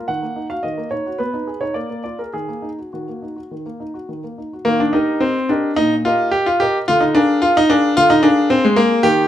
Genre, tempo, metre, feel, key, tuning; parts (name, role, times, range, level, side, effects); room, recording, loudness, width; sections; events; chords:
classical-period piano sonatina; 101-111 BPM; 4/4; straight; Eb minor, Eb major from 4.7 s; A4 = 439 Hz
clear grand piano; solo; 0.0-9.3 s; Bb2 to Gb5; -15 LUFS; equal
moderate large studio reverb, RT60 1.3 s; close, detailed microphones; -14 LUFS; side -11 dB against mid
0.0-4.7 A section; 4.7-9.3 A section
0.1 Ebm; 1.2 Abm/Cb; 1.8 Bb7; 2.3 Ebm; 4.7 Eb; 6.9 Bb7/D